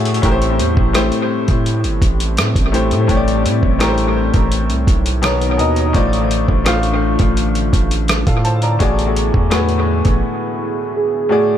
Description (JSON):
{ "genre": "contemporary R&B", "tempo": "84 BPM", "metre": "4/4", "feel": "straight", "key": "unclear", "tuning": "A4 = 440 Hz", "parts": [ { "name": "clear grand piano", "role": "accompaniment", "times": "0.0-11.6 s", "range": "A2 to Bb5", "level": "-18 LUFS", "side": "left 3 dB", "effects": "dub echo" }, { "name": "long sustained 808-style bass", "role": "bass", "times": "0.0-10.2 s", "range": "G1 to A2", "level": "-18 LUFS", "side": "right 1 dB", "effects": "none" }, { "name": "dusty soul sampler-style drum kit", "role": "drums", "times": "0.1-10.2 s", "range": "hi-hat, kick drum, rim click", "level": "-18 LUFS", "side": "right 1 dB", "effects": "overdrive, dub echo" }, { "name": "chorused pulse-width pad", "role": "sustained chords", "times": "0.2-11.6 s", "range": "D3 to A#4", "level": "-24 LUFS", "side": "right 1 dB", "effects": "sidechain pumping" }, { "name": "warm velvety synth lead", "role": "melody", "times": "11.0-11.6 s", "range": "G#4", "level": "-14 LUFS", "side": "right 4 dB", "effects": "chorus, dub echo" } ], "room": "light reverb, digital ambience", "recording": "echo-heavy mix", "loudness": "-13 LUFS", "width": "side -10 dB against mid", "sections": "0.0-11.6 A section", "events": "break 10.2-11.6", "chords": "0.2 Am7; 5.2 Bmaj7; 5.9 Bbmaj9/A (rootless); 8.8 E7/A", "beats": "| 0.23 0.95 1.66 2.38 | 3.09 3.80 4.52 5.23 | 5.95 6.66 7.38 8.09 | 8.80 9.52 10.23 10.95" }